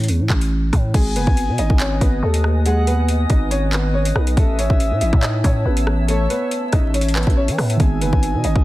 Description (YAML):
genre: hip hop, drill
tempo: 140 BPM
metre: 4/4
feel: half-time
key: G# phrygian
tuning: A4 = 440 Hz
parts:
  - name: muted felt-like synth keys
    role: accompaniment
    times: 0.0-1.0, 7.8-8.6 s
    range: D#3 to E4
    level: -24 LUFS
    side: right 4 dB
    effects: chorus
  - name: growling 808-style bass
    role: bass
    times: 0.0-8.6 s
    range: F#1 to E3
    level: -19 LUFS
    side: equal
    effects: none
  - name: drill drum kit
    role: drums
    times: 0.0-8.6 s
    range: crash cymbal, handclaps, hi-hat, kick drum, rim click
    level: -19 LUFS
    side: equal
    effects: soft clipping on snare
  - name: dark grand piano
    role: melody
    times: 0.9-8.6 s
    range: G#3 to E5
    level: -24 LUFS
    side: equal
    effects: none
  - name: breathy flute-like synth lead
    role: second line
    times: 0.9-8.6 s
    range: C#5 to G#5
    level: -28 LUFS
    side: left 2 dB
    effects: chorus, tape echo
  - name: granular cloud pad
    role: sustained chords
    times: 1.5-8.6 s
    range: B4 to E6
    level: -30 LUFS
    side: equal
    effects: built-in reverb
room: digital ambience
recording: dense, heavily limited modern master, vinyl crackle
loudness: -15 LUFS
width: side -17 dB against mid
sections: 0.9-8.6 A section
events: none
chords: 0.0 A; 0.9 G#m; 4.4 A; 7.8 G#m